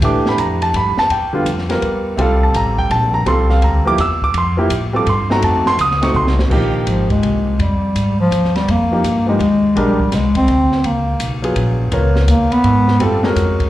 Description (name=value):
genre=modal jazz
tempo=166 BPM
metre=3/4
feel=swing 65% on 8ths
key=Bb phrygian from 6.5 s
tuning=A4 = 440 Hz
part: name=warm concert grand piano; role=accompaniment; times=0.0-13.7 s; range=D3 to E6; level=-16 LUFS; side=right 1 dB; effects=slapback echo
part: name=upright bass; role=bass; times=0.0-13.7 s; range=Ab1 to A2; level=-17 LUFS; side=equal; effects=none
part: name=open jazz drum kit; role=drums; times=0.0-13.7 s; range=crash cymbal, hi-hat, kick drum, ride cymbal, snare drum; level=-25 LUFS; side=equal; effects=none
part: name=mellow bass clarinet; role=second line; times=6.5-13.0 s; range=Eb3 to C4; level=-15 LUFS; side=left 1 dB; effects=slapback echo
room=moderate club reverb, RT60 0.6 s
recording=live gig heard through the venue's PA, club reverb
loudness=-13 LUFS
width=side -14 dB against mid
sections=0.0-6.5 A section; 6.5-13.7 A section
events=drum fill 6.2-6.5; bass clarinet solo 6.5-13.7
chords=0.0 A9sus4; 2.2 C9sus4; 5.4 F7b9; 6.5 Bb13sus4; 10.8 Db13sus4